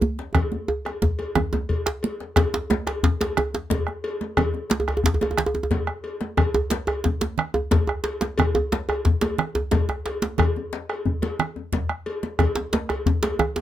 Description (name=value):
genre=west african traditional, West African drum ensemble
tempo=120 BPM (dotted quarters)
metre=12/8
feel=straight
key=none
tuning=none
part: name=congas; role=percussion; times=0.0-13.6 s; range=none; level=-27 LUFS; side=right 4 dB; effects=none
part: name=djembe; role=percussion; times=0.0-13.6 s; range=none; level=-25 LUFS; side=right 2 dB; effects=none
part: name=bombo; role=percussion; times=0.2-13.6 s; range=none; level=-23 LUFS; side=left 1 dB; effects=none
part: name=djembe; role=percussion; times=0.2-13.6 s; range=none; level=-29 LUFS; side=left 4 dB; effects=none
part: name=cowbell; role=percussion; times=0.3-13.4 s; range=none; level=-30 LUFS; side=left 3 dB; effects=none
room=light reverb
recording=close, detailed microphones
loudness=-22 LUFS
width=side -12 dB against mid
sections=0.0-2.4 A section; 2.4-13.6 B section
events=drum fill 0.4-2.4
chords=none